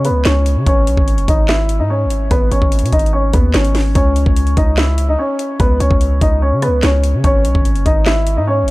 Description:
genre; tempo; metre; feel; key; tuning
hip hop, drill; 146 BPM; 4/4; half-time; unclear; A4 = 440 Hz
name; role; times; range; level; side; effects
hard-hitting 808-style bass; bass; 0.0-8.7 s; F#1 to C#3; -15 LUFS; equal; none
drill drum kit; drums; 0.0-8.7 s; handclaps, hi-hat, kick drum, rim click, snare drum; -16 LUFS; equal; none
downlifter; sound effects; 0.0-0.7 s; none; barely audible; none; none
clear grand piano; melody; 0.1-8.7 s; B3 to E5; -17 LUFS; equal; low-pass filter, tape echo
room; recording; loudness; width
little or no reverb; dark, warm production; -12 LUFS; side -19 dB against mid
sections
0.0-8.7 A section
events
none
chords
0.0 C#7(no3); 0.7 G#m; 4.0 N.C.; 7.2 G#5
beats
0.25 | 0.67 1.08 1.49 1.90 | 2.31 2.72 3.13 3.54 | 3.95 4.36 4.78 5.19 | 5.60 6.01 6.42 6.83 | 7.24 7.65 8.06 8.47

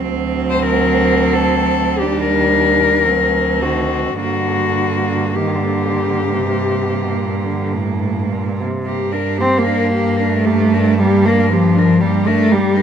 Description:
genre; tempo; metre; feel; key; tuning
classical, lyrical piece for cello ensemble; 51-62 BPM; 4/4; rubato; G minor; A4 = 440 Hz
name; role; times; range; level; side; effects
rich cello; melody; 0.0-12.8 s; F#4 to C5; -19 LUFS; left 6 dB; none
clear cello; second line; 0.0-12.8 s; Bb3 to D4; -22 LUFS; right 11 dB; none
rich cello; accompaniment; 0.0-12.8 s; A2 to C4; -18 LUFS; left 1 dB; none
warm cello; bass; 0.0-12.8 s; D2 to G2; -20 LUFS; right 2 dB; none
room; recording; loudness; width
moderate concert hall reverb, RT60 2.0 s; none; -14 LUFS; side -8 dB against mid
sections
0.0-8.9 A section; 8.9-12.8 A section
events
none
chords
0.0 D7; 2.0 Ebmaj7; 3.1 D7; 4.2 Gm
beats
| 0.03 1.01 2.02 3.07 | 4.21 5.37 6.54 7.72 | 8.87 9.94 11.00 12.02

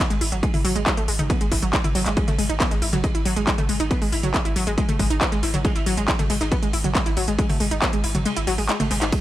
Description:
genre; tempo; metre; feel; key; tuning
driving peak-time techno; 138 BPM; 4/4; straight; unclear; A4 = 439 Hz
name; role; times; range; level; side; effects
analog pluck; riff; 0.0-9.2 s; F#3 to E4; -25 LUFS; equal; chorus, tube saturation, sidechain pumping, tape echo
warm sub bass; bass; 0.1-9.1 s; G#1; -27 LUFS; equal; overdrive, sidechain pumping, low-pass filter
soft brush drum kit; drums; 0.1-9.2 s; ride cymbal, snare drum; -34 LUFS; right 3 dB; sidechain pumping on cymbals, high-pass filter on cymbals, small room ambience, high-pass filter on snare, high-pass filter on room
techno drum kit; drums; 0.1-9.2 s; handclaps, hi-hat, ride cymbal, toms; -25 LUFS; equal; overdrive, small room ambience
electronic kick drum; drums; 0.4-9.2 s; none; -23 LUFS; equal; overdrive, small room ambience
room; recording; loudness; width
little or no reverb; none; -19 LUFS; side -14 dB against mid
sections
0.0-9.2 A section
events
kick drops out 8.3-9.1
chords
none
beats
| 0.43 0.86 1.30 1.73 | 2.17 2.60 3.04 3.47 | 3.91 4.34 4.78 5.21 | 5.65 6.08 6.52 6.95 | 7.39 7.82 8.26 8.69 | 9.12

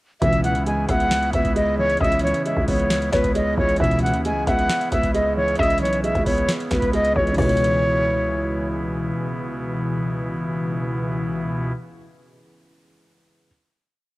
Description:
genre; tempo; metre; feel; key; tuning
hip hop, trap; 134 BPM; 4/4; half-time; C# minor; A4 = 442 Hz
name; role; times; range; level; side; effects
breathy concert flute; melody; 0.2-8.7 s; B4 to G#5; -22 LUFS; equal; low-pass filter
dark baby grand piano; accompaniment; 0.2-13.5 s; C#3 to B3; -27 LUFS; right 2 dB; low-pass filter, cassette tape
pipe organ, soft reed; sustained chords; 0.2-11.7 s; C#3 to E4; -34 LUFS; right 1 dB; cassette tape
funky polysynth comp; stabs; 0.2-0.5, 3.8-4.1, 7.4-11.7 s; C#2 to E3; -24 LUFS; left 1 dB; chorus, cassette tape, analog delay
growling 808-style bass; bass; 0.2-9.1 s; B1 to D#2; -25 LUFS; equal; none
booming analog drum machine; drums; 0.2-7.7 s; crash cymbal, hi-hat, kick drum, snare drum; -26 LUFS; equal; cassette tape
warbly dusty pluck; second line; 0.9-8.7 s; C#5 to E5; -29 LUFS; left 2 dB; chorus, cassette tape
room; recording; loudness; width
light reverb; home recording on cassette; -19 LUFS; side -19 dB against mid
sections
0.2-7.4 hook; 7.4-11.0 final chord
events
none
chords
0.2 C#m7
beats
| 0.22 0.67 1.11 1.56 | 2.01 2.46 2.90 3.35 | 3.80 4.25 4.70 5.14 | 5.59 6.04 6.49 6.93 | 7.38 7.83 8.28 8.72 | 9.17 9.62 10.07 10.52

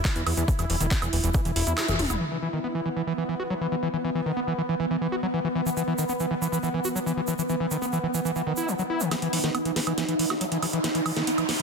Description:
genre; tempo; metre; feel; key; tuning
psychedelic trance; 139 BPM; 4/4; straight; unclear; A4 = 441 Hz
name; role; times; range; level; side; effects
bubbling stepped-filter texture; sustained chords; 0.0-11.6 s; B3 to E4; -29 LUFS; equal; chorus, built-in reverb, sidechain pumping
screaming distorted acid line; riff; 0.0-11.6 s; D#3 to F#4; -28 LUFS; moving between left 5 dB and right 5 dB; distortion, chorus, auto-pan, sidechain pumping, dub echo
electronic kick drum; drums; 0.0-1.4 s; none; -25 LUFS; equal; none
techno drum kit; drums; 0.0-2.2, 9.1-11.6 s; handclaps, hi-hat, snare drum, toms, woodblock; -29 LUFS; right 2 dB; low-pass filter on hats, low-pass filter on perc, low-pass filter on snare, low-pass filter on toms
egg shaker; percussion; 0.0-2.2, 5.7-9.1 s; none; -35 LUFS; right 6 dB; none
plucky analog bass; bass; 0.2-2.2 s; E1 to E2; -27 LUFS; equal; none
riser; sound effects; 9.7-11.6 s; none; -35 LUFS; right 1 dB; none
room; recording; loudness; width
moderate lush hall reverb, RT60 1.7 s; dense, heavily limited modern master; -24 LUFS; side -4 dB against mid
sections
0.0-2.2 A section; 2.2-9.1 B section; 9.1-11.6 C section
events
kick drops out 1.8-2.2; drum fill 1.8-2.2, 9.1-11.6; band accent 1.8; build-up 9.1-11.6; filter sweep on synth texture 9.1-11.6; riser 9.7-11.6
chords
0.0 E5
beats
0.05 | 0.48 0.91 1.34 1.78 | 2.21 2.64 3.07 3.50 | 3.94 4.37 4.80 5.23 | 5.66 6.09 6.52 6.96 | 7.39 7.82 8.25 8.68 | 9.11 9.55 9.98 10.41 | 10.84 11.27

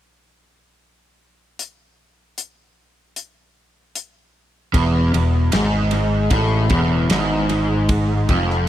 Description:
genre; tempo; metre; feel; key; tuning
psychedelic rock; 76 BPM; 4/4; straight; unclear; A4 = 440 Hz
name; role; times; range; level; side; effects
damped 70s drum kit; drums; 1.6-8.6 s; hi-hat, kick drum, ride cymbal, snare drum; -24 LUFS; equal; tape echo
overdriven semi-hollow guitar; riff; 4.7-8.7 s; E2 to A2; -18 LUFS; equal; rotary speaker, tape echo
picked electric bass; bass; 4.7-8.7 s; E1 to A1; -21 LUFS; equal; none
room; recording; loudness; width
small room ambience; echo-heavy mix; -16 LUFS; side -12 dB against mid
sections
1.6-4.7 A section; 4.7-8.7 B section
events
none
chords
1.6 N.C.; 4.7 E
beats
| 1.59 2.38 3.16 3.95 | 4.74 5.53 6.32 7.10 | 7.89

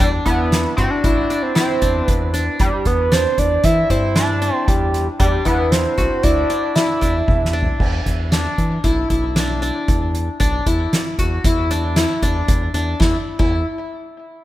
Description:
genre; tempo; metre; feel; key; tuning
progressive instrumental, band music in an uneven meter; 115 BPM; 5/4; straight; E minor; A4 = 438 Hz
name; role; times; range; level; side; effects
sync lead; melody; 0.0-7.5 s; G3 to E4; -20 LUFS; right 1 dB; chorus, phaser, tape echo
qanun; arpeggios; 0.0-13.6 s; D4 to F#4; -22 LUFS; left 2 dB; tape echo
round analog bass; bass; 0.0-13.6 s; A1 to E3; -22 LUFS; equal; none
soft-mallet drum kit; drums; 0.0-13.5 s; crash cymbal, hi-hat, kick drum, snare drum, toms; -20 LUFS; equal; none
room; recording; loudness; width
light reverb; rough home demo mix; -15 LUFS; side -14 dB against mid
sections
0.0-7.8 A section; 7.8-13.0 B section; 13.0-14.4 C section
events
drum fill 7.3-7.8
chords
0.0 Csus2; 5.2 E5; 13.0 N.C.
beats
| 0.00 0.52 1.04 1.56 2.08 | 2.60 3.12 3.64 4.16 4.68 | 5.20 5.72 6.24 6.76 7.28 | 7.80 8.32 8.84 9.36 9.88 | 10.40 10.93 11.45 11.97 12.49 | 13.01 13.53

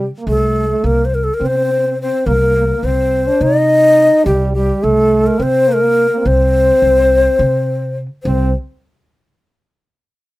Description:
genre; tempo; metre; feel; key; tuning
turkish; 211 BPM (eighths); 7/8; straight; C makam huseyni; A4 = 440 Hz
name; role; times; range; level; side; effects
breathy ney; melody; 0.0-8.5 s; G4 to Eb5; -13 LUFS; left 2 dB; none
warm French horn; second line; 0.0-8.5 s; G3 to Eb4; -18 LUFS; right 3 dB; none
upright bass; bass; 0.0-8.5 s; C2 to C3; -18 LUFS; equal; none
room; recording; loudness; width
light reverb; rough home demo mix; -11 LUFS; side -18 dB against mid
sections
0.0-8.2 A section; 8.2-10.2 B section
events
none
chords
none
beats
| 0.27 0.55 0.84 1.12 1.41 1.69 1.98 | 2.26 2.55 2.83 3.12 3.40 3.69 3.97 | 4.26 4.54 4.83 5.11 5.39 5.68 5.96 | 6.25 6.54 6.82 7.11 7.39 7.68 7.96 | 8.25

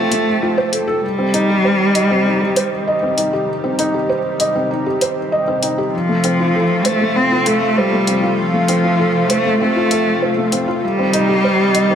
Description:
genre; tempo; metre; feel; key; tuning
piano and strings electronica; 98 BPM; 4/4; straight; C dorian; A4 = 440 Hz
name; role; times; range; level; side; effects
rich cello; melody; 0.0-11.9 s; F3 to C4; -16 LUFS; equal; none
lush unison pad; sustained chords; 0.0-11.9 s; C3 to A4; -23 LUFS; equal; chorus
felt-muted upright piano; riff; 0.0-11.9 s; A3 to Eb5; -18 LUFS; equal; digital delay
electronic hi-hat; drums; 0.1-11.9 s; none; -21 LUFS; left 2 dB; none
room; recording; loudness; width
moderate lush hall reverb, RT60 1.6 s, studio reverb; none; -14 LUFS; side -8 dB against mid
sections
0.0-11.9 A section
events
none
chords
0.0 F; 1.0 Cm; 5.9 F; 10.8 Cm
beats
0.42 | 1.03 1.65 2.26 2.87 | 3.48 4.10 4.71 5.32 | 5.93 6.54 7.16 7.77 | 8.38 8.99 9.61 10.22 | 10.83 11.44

